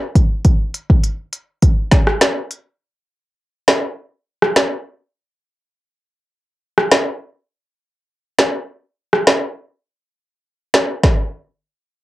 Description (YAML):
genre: dancehall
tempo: 102 BPM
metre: 4/4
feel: straight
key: none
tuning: none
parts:
  - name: afro-pop drum kit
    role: drums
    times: 0.2-11.2 s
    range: hi-hat, kick drum, rim click, snare drum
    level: -13 LUFS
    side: equal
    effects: none
room: light reverb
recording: home recording on cassette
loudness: -14 LUFS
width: side -17 dB against mid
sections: 0.0-2.8 A section; 2.8-12.0 B section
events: none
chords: none